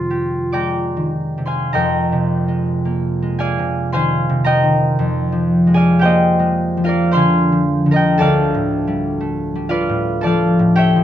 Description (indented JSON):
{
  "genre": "classical, impressionist duo for clarinet and harp",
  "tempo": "44-60 BPM",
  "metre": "3/4",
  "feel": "rubato",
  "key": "F dorian",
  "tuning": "A4 = 437 Hz",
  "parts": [
    { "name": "clear clarinet", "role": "melody", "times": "0.0-1.2 s", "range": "F4", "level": "-22 LUFS", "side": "right 1 dB", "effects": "none" },
    { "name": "concert harp", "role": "accompaniment", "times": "0.0-11.0 s", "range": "D2 to D6", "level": "-14 LUFS", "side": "equal", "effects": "none" }
  ],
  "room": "light reverb",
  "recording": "close, detailed microphones",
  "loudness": "-14 LUFS",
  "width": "side -11 dB against mid",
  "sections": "0.0-1.7 A section; 1.7-11.0 B section",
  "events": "none",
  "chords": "0.0 Fm11; 8.2 Dm11"
}